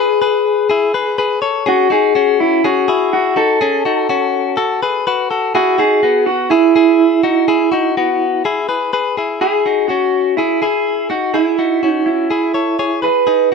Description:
indie pop; 124 BPM; 4/4; straight; A4 = 442 Hz
electric guitar through a small old amp; melody; 0.0-13.5 s; E4 to B4; -14 LUFS; right 2 dB; phaser, plate reverb
direct-recorded clean electric guitar; arpeggios; 0.0-13.5 s; B3 to C#5; -17 LUFS; left 5 dB; plate reverb
moderate studio reverb, RT60 0.8 s; -12 LUFS; side -4 dB against mid
0.0-9.4 A section; 9.4-13.5 B section
0.0 E; 1.4 F#m; 5.5 E; 9.4 C#m
0.22 0.71 1.19 | 1.67 2.16 2.64 3.12 | 3.61 4.09 4.58 5.06 | 5.54 6.03 6.51 6.99 | 7.47 7.96 8.44 8.92 | 9.41 9.89 10.38 10.86 | 11.34 11.83 12.31 12.79 | 13.28

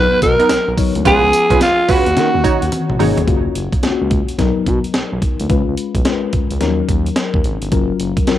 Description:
R&B, new jack swing; 108 BPM; 4/4; swing 63% on 16ths; F# major; A4 = 441 Hz
raspy alto saxophone; melody; 0.0-2.7 s; E#4 to B4; -14 LUFS; right 1 dB; cassette tape
mellow FM electric piano; accompaniment; 0.0-8.4 s; D#3 to C#5; -20 LUFS; left 8 dB; chorus, cassette tape
smooth gliding synth bass; bass; 0.0-8.3 s; F#1 to D#3; -21 LUFS; right 1 dB
breakbeat sampler-style drum kit; drums; 0.2-8.4 s; hi-hat, kick drum, snare drum, tambourine, toms; -18 LUFS; equal; cassette tape
funky polysynth comp; stabs; 0.4-3.2 s; B3 to C#5; -21 LUFS; right 8 dB; chorus, cassette tape, analog delay
light reverb; home recording on cassette; -13 LUFS; side -12 dB against mid
0.0-3.3 A section; 3.3-8.4 B section
drum fill 2.7-3.3
0.0 Bmaj7; 1.1 C#7; 2.2 D#m7; 3.3 F#maj7; 4.4 Bmaj7; 5.5 C#7; 6.6 D#m7; 7.7 F#maj7
0.50 | 1.05 1.61 2.16 2.72 | 3.27 3.83 4.39 4.94 | 5.50 6.05 6.61 7.16 | 7.72 8.27

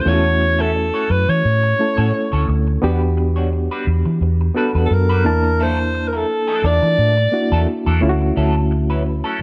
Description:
soul; 87 BPM; 4/4; swing 54% on 16ths; A4 = 440 Hz
breathy alto saxophone; melody; 0.0-7.7 s; A4 to D5; -21 LUFS; equal
overdriven reed electric piano; accompaniment; 0.0-9.4 s; A3 to A5; -24 LUFS; equal; medium tremolo
clean electric guitar; riff; 0.1-9.4 s; F#3 to E5; -30 LUFS; equal; wah, spring reverb
vintage muted fingered electric bass; bass; 0.1-9.2 s; D2 to E3; -20 LUFS; equal
dark trombone section; stabs; 6.6-7.1 s; A#2 to D4; -29 LUFS; equal
light reverb, small room ambience; -17 LUFS; mono
0.1-9.4 A section
reed electric piano fill 9.1-9.4
0.1 Dmaj7/E; 2.8 Em9; 5.3 F#7alt/E; 8.0 Dmaj9
| 0.06 0.75 1.45 2.14 | 2.83 3.52 4.22 4.91 | 5.60 6.29 6.99 7.68 | 8.37 9.06

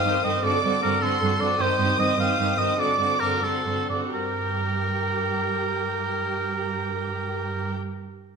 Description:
quick classical-period movement for symphony orchestra; 82-105 BPM (dotted quarters); 6/8; rubato; G minor; A4 = 436 Hz
rich studio violin section; melody; 0.0-7.7 s; G5 to Eb6; -32 LUFS; left 4 dB
clear oboe; second line; 0.0-7.7 s; A4 to F5; -25 LUFS; right 2 dB
rich studio violin section; second line; 0.0-7.7 s; F#4 to C5; -32 LUFS; left 2 dB
dark studio viola section; accompaniment; 0.0-7.7 s; D3 to G4; -29 LUFS; right 2 dB
warm studio cello section; bass; 0.1-7.7 s; G2; -29 LUFS; right 4 dB
wet recital hall reverb, RT60 1.5 s; -22 LUFS; side -5 dB against mid
0.0-4.1 A section; 4.1-7.0 B section
slowing down 1.0-4.1
0.4 D7/G; 1.6 Cm/G; 2.8 D7/G; 4.1 Gm
| 0.44 1.02 | 1.60 2.19 | 2.79 3.44 | 4.14 4.85 | 5.56 6.26

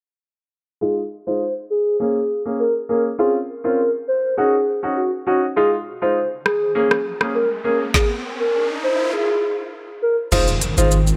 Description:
dancehall; 101 BPM; 4/4; straight; A4 = 440 Hz
hollow clarinet-like synth lead; melody; 0.8-10.9 s; Gb4 to C5; -22 LUFS; equal; chorus, low-pass filter, delay
warm grand piano; accompaniment; 0.8-10.9 s; Ab3 to Ab4; -25 LUFS; equal; low-pass filter
riser and impact; sound effects; 6.7-11.2 s; -31 LUFS; equal
island pop drum kit; drums; 6.5-11.2 s; crash cymbal, hi-hat, kick drum, rim click, shaker, snare drum; -24 LUFS; equal
ethereal airy pad; sustained chords; 10.7-11.2 s; Eb3 to F4; -27 LUFS; equal; ensemble chorus, built-in reverb, sidechain pumping
punchy sub bass; bass; 10.3-11.1 s; F1 to Ab1; -20 LUFS; equal
light reverb; -20 LUFS; mono
0.8-10.3 A section
filter sweep 0.8-10.3; riser 6.7-10.3; kick muted 10.3-11.2; impact 10.3-11.2
0.8 Fm7; 2.0 Bbm7; 3.2 Dbmaj7; 4.4 Ebm7; 5.6 Fm7; 6.8 Bbm7; 7.9 N.C.; 10.3 Fm7
| 0.81 1.41 2.00 2.60 | 3.19 3.79 4.38 4.97 | 5.57 6.16 6.75 7.35 | 7.94 8.54 9.13 9.73 | 10.32 10.91

